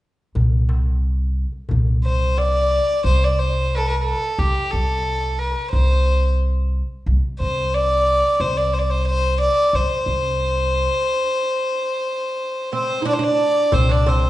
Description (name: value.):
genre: Arabic maqam ensemble.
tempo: 90 BPM.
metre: 4/4.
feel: straight.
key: unclear.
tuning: A4 = 440 Hz.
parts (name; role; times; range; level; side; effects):
upright bass; bass; 0.4-14.3 s; C2; -20 LUFS; equal; none.
darbuka; percussion; 0.4-2.5, 13.7-14.2 s; none; -22 LUFS; left 1 dB; none.
warm violin; melody; 2.0-14.3 s; G4 to D5; -19 LUFS; equal; none.
oud; second line; 12.7-14.3 s; C4 to E4-50c; -23 LUFS; right 3 dB; none.
room: wet recital hall reverb, RT60 1.2 s.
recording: recorded in a church or concert hall, nothing above 10.6 kHz.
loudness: -17 LUFS.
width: side -15 dB against mid.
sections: 0.4-3.0 A section; 3.0-13.7 B section.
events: none.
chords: none.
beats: | 0.36 1.03 1.70 2.37 | 3.04 3.71 4.38 5.04 | 5.71 6.38 7.05 7.72 | 8.39 9.06 9.72 10.39 | 11.06 11.72 12.39 13.06 | 13.72.